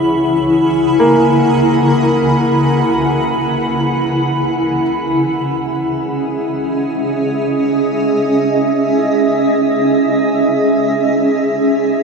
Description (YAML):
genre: ambient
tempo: free time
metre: none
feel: none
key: C# dorian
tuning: A4 = 440 Hz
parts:
  - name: granular cloud pad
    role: sustained chords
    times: 0.0-12.0 s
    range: C#3 to B5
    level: -13 LUFS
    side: right 1 dB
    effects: built-in reverb, shimmer reverb
  - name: felt-muted upright piano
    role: arpeggios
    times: 0.0-4.8 s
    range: A#3 to C#5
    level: -18 LUFS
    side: left 1 dB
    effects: ping-pong delay, shimmer reverb
room: wet huge ambient reverb, RT60 7.5 s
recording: none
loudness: -12 LUFS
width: side -4 dB against mid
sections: 0.0-4.8 A section; 4.8-12.0 B section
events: none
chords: 0.0 E/C#; 4.8 C#m7